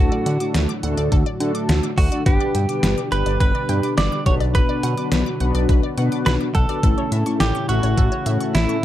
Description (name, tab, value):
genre	synth-pop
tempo	105 BPM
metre	4/4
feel	straight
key	B minor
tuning	A4 = 441 Hz
part	direct-recorded clean electric guitar	melody	0.0-8.8 s	E4 to D5	-25 LUFS	right 3 dB	tape echo, plate reverb
part	mellow synth brass	accompaniment	0.0-8.8 s	A3 to B4	-25 LUFS	left 2 dB	chorus, plate reverb
part	warm analog pad	sustained chords	0.0-8.8 s	A2 to G4	-27 LUFS	equal	chorus, plate reverb
part	resonant blip pluck	arpeggios	0.0-8.8 s	A4 to B6	-33 LUFS	left 1 dB	phaser, tape echo, plate reverb
part	fat analog bass	bass	0.0-8.7 s	G1 to D3	-21 LUFS	equal	none
part	detuned 8-bit digital drum machine	drums	0.3-8.7 s	hi-hat, kick drum, snare drum	-20 LUFS	equal	none
room	light reverb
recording	dark, warm production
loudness	-17 LUFS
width	side -12 dB against mid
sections	0.0-8.8 A section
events	none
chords	0.0 D; 2.3 G; 4.3 Bm; 6.8 A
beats	0.55 1.12 1.69 | 2.26 2.83 3.40 3.98 | 4.55 5.12 5.69 6.26 | 6.83 7.41 7.98 8.55